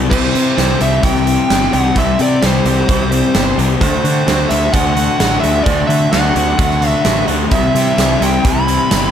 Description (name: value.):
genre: rock, shoegaze and dream pop.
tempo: 130 BPM.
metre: 4/4.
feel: straight.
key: C lydian.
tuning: A4 = 440 Hz.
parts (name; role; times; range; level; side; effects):
cranked stack guitar; riff; 0.0-9.1 s; C3 to G4; -21 LUFS; right 11 dB; overdrive, reverse reverb.
thick fuzz guitar; riff; 0.0-9.1 s; C3 to D4; -17 LUFS; left 9 dB; distortion, wide subtle chorus.
fuzz picked electric bass; bass; 0.0-9.1 s; G1 to D3; -18 LUFS; right 1 dB; overdrive.
fuzz lead guitar; melody; 0.1-9.1 s; C5 to B5; -18 LUFS; equal; distortion, analog delay.
big rock drum kit; drums; 0.1-9.0 s; crash cymbal, hi-hat, kick drum, snare drum; -18 LUFS; right 1 dB; none.
tambourine; percussion; 7.5-9.0 s; none; -33 LUFS; right 16 dB; none.
room: light reverb, studio reverb.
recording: none.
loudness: -11 LUFS.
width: side -9 dB against mid.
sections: 0.1-9.1 A section.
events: none.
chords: 0.1 C; 3.8 D7; 7.5 Cmaj7.